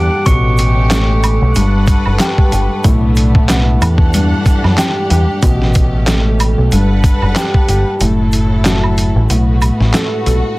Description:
hip hop, boom-bap hip-hop; 93 BPM; 4/4; swing 57% on 16ths; B minor; A4 = 439 Hz
dark grand piano; accompaniment; 0.0-10.6 s; G2 to A4; -16 LUFS; left 1 dB; cassette tape, plate reverb
warm studio string section; sustained chords; 0.0-10.6 s; E3 to F#5; -22 LUFS; equal; plate reverb
deep dub picked electric bass; bass; 0.0-10.4 s; F#1 to F#2; -13 LUFS; equal
glockenspiel with rubber mallets; melody; 0.3-2.3 s; C#6 to C#7; -22 LUFS; right 1 dB; tape echo, plate reverb
boom bap sampler-style drum kit; drums; 0.3-10.4 s; handclaps, hi-hat, kick drum, snare drum; -14 LUFS; equal; vintage 12-bit sampler grit
egg shaker and woodblock; percussion; 0.3-10.4 s; -24 LUFS; right 3 dB
light reverb; dense, heavily limited modern master, vinyl crackle; -10 LUFS; side -20 dB against mid
0.0-8.0 A section; 8.0-10.6 B section
kick muted 8.0-10.6
0.3 A9; 1.6 Gmaj9; 2.8 Bm7; 3.8 Em11; 5.4 A9; 6.7 Gmaj9; 8.0 F#m7; 9.3 B5
| 0.27 0.91 1.55 2.20 | 2.85 3.49 4.14 4.78 | 5.43 6.07 6.72 7.36 | 8.01 8.65 9.30 9.94 | 10.59

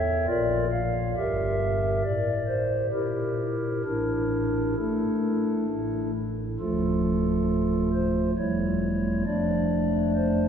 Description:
classical, chorale-style piece for pipe organ; 68 BPM; 3/4; straight; D minor; A4 = 441 Hz
pipe organ, stopped flute; solo; 0.0-10.5 s; D1 to F5; -23 LUFS; equal
wet cathedral reverb, RT60 4.3 s; heard from further back in the room, lossy compression artefacts; -24 LUFS; side -8 dB against mid
0.0-6.6 A section; 6.6-10.5 B section
0.3 Bb; 1.2 Edim/G; 3.9 Asus4; 6.6 Dm; 8.4 A7/E; 9.3 Dm/F
0.30 | 1.18 2.05 2.95 | 3.86 4.78 5.70 | 6.61 7.50 8.38 | 9.26 10.14

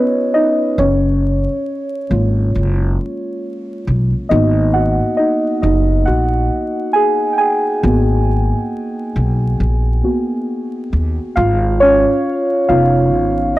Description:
hip hop; 68 BPM; 4/4; swing 61% on 16ths; G# dorian; A4 = 441 Hz
muted felt-like synth keys; accompaniment; 0.0-13.6 s; G#3 to G#5; -15 LUFS; equal; chorus, low-pass filter
upright bass; bass; 0.8-13.5 s; E#1 to D#2; -16 LUFS; equal; transformer saturation
light reverb, studio reverb; dry, gritty hardware recording, vinyl crackle; -13 LUFS; side -16 dB against mid
0.0-13.6 A section
synth keys solo 0.0-13.6
0.0 C#7; 0.8 F#maj9; 4.3 G#m9; 11.4 C#7
| 0.78 1.66 2.54 3.42 | 4.30 5.19 6.07 6.95 | 7.83 8.72 9.60 10.48 | 11.36 12.24 13.13

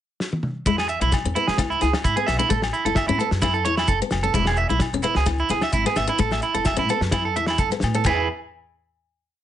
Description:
highlife guitar band; 130 BPM; 4/4; straight; E major; A4 = 440 Hz
warm soul drum kit; drums; 0.2-8.2 s; crash cymbal, kick drum, snare drum, toms; -25 LUFS; equal
picked steel-string acoustic guitar; accompaniment; 0.7-8.2 s; E3 to E4; -27 LUFS; left 7 dB
electric guitar at the edge of break-up; arpeggios; 0.7-8.3 s; E4 to E5; -23 LUFS; right 5 dB; slapback echo
upright bass; bass; 0.7-8.3 s; E1 to A2; -26 LUFS; equal
maracas; percussion; 0.7-8.3 s; -38 LUFS; left 6 dB
agogo bells; percussion; 0.8-8.2 s; -33 LUFS; left 7 dB
light reverb; nothing above 10.5 kHz; -19 LUFS; side -11 dB against mid
0.0-0.7 pickup bar; 0.7-8.1 groove; 8.1-9.4 final chord
drum fill 0.2-0.7
0.0 N.C.; 0.7 E; 2.5 A; 4.3 E; 6.2 A5; 8.1 E
0.20 | 0.66 1.12 1.58 2.05 | 2.51 2.97 3.43 3.89 | 4.35 4.81 5.27 5.73 | 6.20 6.66 7.12 7.59 | 8.05

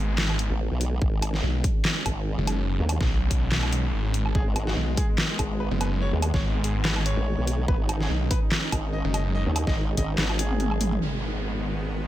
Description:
heavy wobble dubstep; 144 BPM; 4/4; swing 55% on 16ths, half-time; G# minor; A4 = 440 Hz
supersaw pad; sustained chords; 0.0-12.1 s; D#3 to C#4; -34 LUFS; equal; sidechain pumping, low-pass filter
snarling distorted saw bass; bass; 0.0-9.4 s; F#1 to B1; -25 LUFS; equal; distortion, overdrive
dubstep drum kit; drums; 0.2-11.7 s; crash cymbal, handclaps, hi-hat, snare drum, toms, woodblock; -28 LUFS; equal; low-pass filter on snare, low-pass filter on hats, low-pass filter on perc, low-pass filter on toms, low-pass filter on cymbals, low-pass filter on room
formant-sweep wobble bass; bass; 0.5-12.1 s; G#1 to D#2; -27 LUFS; equal; chorus, overdrive
electronic kick drum; drums; 1.0-10.1 s; -26 LUFS; equal
bright grand piano; melody; 4.3-10.9 s; G#3 to D#5; -34 LUFS; left 1 dB; ping-pong delay
downlifter; sound effects; 11.0-12.1 s; -34 LUFS; equal
digital ambience; -23 LUFS; side -14 dB against mid
0.0-11.0 A section; 11.0-12.1 B section
drop 0.0-11.0; drum fill 10.2-11.0; filter sweep on drum 11.0-12.1
0.0 G#m
0.18 0.60 | 1.02 1.43 1.85 2.27 | 2.68 3.10 3.52 3.93 | 4.35 4.77 5.18 5.60 | 6.02 6.43 6.85 7.27 | 7.68 8.10 8.52 8.93 | 9.35 9.77 10.18 10.60 | 11.02 11.43 11.85

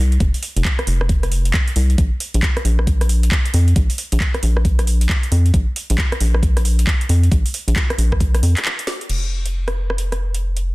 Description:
UK garage, two-step garage; 135 BPM; 4/4; swing 62% on 16ths; A4 = 442 Hz
rubbery square bass; bass; 0.0-10.7 s; F1 to F2; -16 LUFS; equal; sidechain pumping
garage drum kit; drums; 0.1-10.6 s; crash cymbal, handclaps, hi-hat, rim click, snare drum; -24 LUFS; right 1 dB; overdrive, studio reverb
electronic kick drum; drums; 0.2-8.3 s; -18 LUFS; equal; overdrive, studio reverb
little or no reverb; dense, heavily limited modern master; -15 LUFS; side -22 dB against mid
0.0-9.1 A section; 9.1-10.7 B section
break 8.7-9.1; drum fill 8.9
| 0.20 0.65 1.09 1.54 | 1.98 2.43 2.87 3.32 | 3.76 4.21 4.65 5.09 | 5.54 5.98 6.43 6.87 | 7.32 7.76 8.21 8.65 | 9.09 9.54 9.98 10.43

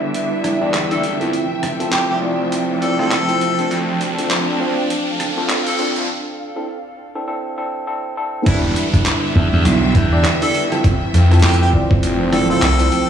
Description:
glitch hop; 101 BPM; 4/4; swing 58% on 16ths; A4 = 439 Hz
bright studio string section; sustained chords; 0.0-13.1 s; C3 to E5; -24 LUFS; equal; sidechain pumping, low-pass filter
tine electric piano; stabs; 0.0-13.1 s; C4 to E5; -21 LUFS; equal; overdrive, vintage 12-bit sampler grit, sidechain pumping, low-pass filter, tape echo
riser and downlifter; sound effects; 1.2-13.1 s; -29 LUFS; right 1 dB
ethereal airy pad; texture; 0.0-13.1 s; F3 to A5; -25 LUFS; right 2 dB; ensemble chorus, built-in reverb, sidechain pumping
boom bap sampler-style drum kit; drums; 0.1-13.1 s; crash cymbal, handclaps, hi-hat, rim click; -23 LUFS; equal; overdrive, studio reverb
phased detuned saw bass; bass; 0.6-12.9 s; E1 to F2; -19 LUFS; equal; phaser, high-pass filter
bright harmonica; melody; 0.9-13.1 s; E4 to A4; -24 LUFS; left 1 dB; low-pass filter, tape echo
electronic kick drum; drums; 8.5-12.0 s; -16 LUFS; equal; overdrive, studio reverb
glassy slap bass; bass; 9.4-11.7 s; B1 to F2; -14 LUFS; right 1 dB
light reverb, digital ambience; played on a big sound system in a bare room, stone room reverb, high-pass filter, small room ambience; -15 LUFS; side -8 dB against mid
0.0-8.5 A section; 8.5-13.1 B section
build-up 0.0-8.5; filter sweep on tine electric piano 0.0-8.5; filter sweep 0.0-8.5; riser 1.2-6.1; break 6.1-8.5; drop 8.5-13.1
0.0 Em7; 1.3 Fmaj7; 3.7 Dm7; 6.1 Am; 8.5 Em7; 10.8 Fmaj7
0.15 0.74 | 1.34 1.93 2.52 3.12 | 3.71 4.31 4.90 5.50 | 6.09 6.68 7.28 7.87 | 8.47 9.06 9.65 10.25 | 10.84 11.44 12.03 12.62

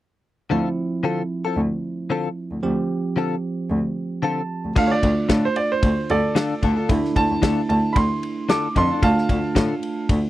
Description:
straight-eighth soul blues; 113 BPM; 4/4; swing 56% on 16ths; D minor; A4 = 442 Hz
bell-like tine electric piano; accompaniment; 0.5-10.3 s; F3 to A5; -25 LUFS; right 3 dB
direct-recorded clean electric guitar; stabs; 0.5-9.7 s; D3 to A4; -23 LUFS; left 5 dB; wide subtle chorus
muted cello; bass; 0.5-10.2 s; D2 to A2; -24 LUFS; equal
bright upright piano; second line; 4.8-10.1 s; A4 to D6; -23 LUFS; right 3 dB
warm soul drum kit; drums; 4.8-10.2 s; crash cymbal, kick drum, ride cymbal, snare drum; -21 LUFS; equal
little or no reverb; dry, close 1970s-style studio recording; -19 LUFS; side -15 dB against mid
0.5-4.8 A section; 4.8-10.3 B section
tine electric piano fill 4.0-4.8; upright piano solo 4.8-10.3
0.5 Dm7; 4.8 Dm
| 0.51 1.04 1.57 2.10 | 2.63 3.17 3.70 4.23 | 4.76 5.30 5.83 6.36 | 6.89 7.43 7.96 8.49 | 9.03 9.56 10.10

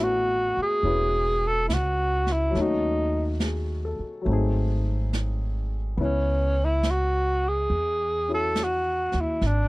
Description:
jazz ballad; 70 BPM; 4/4; swing 69% on 8ths; A4 = 439 Hz
breathy tenor saxophone; melody; 0.0-9.7 s; C#4 to A4; -24 LUFS; equal
warm upright piano; accompaniment; 0.0-9.4 s; F#3 to B4; -30 LUFS; left 3 dB
upright bass; bass; 0.0-9.7 s; E1 to E2; -26 LUFS; equal
jazz brush drum kit; drums; 0.8-9.7 s; brushed snare drum, hi-hat, snare drum; -31 LUFS; right 2 dB
little or no reverb; dry, close 1970s-style studio recording; -22 LUFS; side -21 dB against mid
0.0-9.7 A section
0.0 Amaj13; 2.6 D#m7b5; 4.3 G#7b9; 6.0 C#m7
0.84 1.70 | 2.55 3.41 4.27 5.12 | 5.98 6.84 7.70 8.55 | 9.41

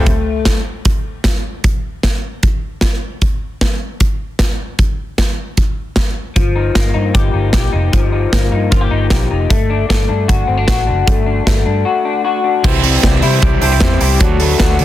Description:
jangly indie pop; 153 BPM; 4/4; straight; A4 = 440 Hz
bright upright piano; accompaniment; 0.0-0.1, 12.6-14.8 s; E4 to D5; -21 LUFS; right 5 dB
crunchy overdriven guitar; accompaniment; 0.0-0.1, 12.6-14.8 s; C3 to F#4; -22 LUFS; right 5 dB
electric guitar through a small old amp; arpeggios; 0.0-0.6, 6.4-14.8 s; E3 to G4; -17 LUFS; left 6 dB; analog chorus, tape echo
vintage muted fingered electric bass; bass; 0.0, 6.4-14.8 s; F1 to D3; -16 LUFS; equal
big rock drum kit; drums; 0.1-14.8 s; crash cymbal, hi-hat, kick drum, snare drum; -15 LUFS; equal
small room ambience; dense, heavily limited modern master; -12 LUFS; side -13 dB against mid
0.1-12.6 A section; 12.6-14.8 B section
0.1 N.C.; 6.4 Ebadd9; 9.5 Dadd11; 12.6 C; 14.2 D
| 0.07 0.46 0.85 1.25 | 1.64 2.03 2.43 2.82 | 3.21 3.61 4.00 4.39 | 4.79 5.18 5.57 5.97 | 6.36 6.75 7.15 7.54 | 7.93 8.32 8.72 9.11 | 9.50 9.90 10.29 10.68 | 11.07 11.47 11.86 12.25 | 12.64 13.04 13.43 13.82 | 14.21 14.61

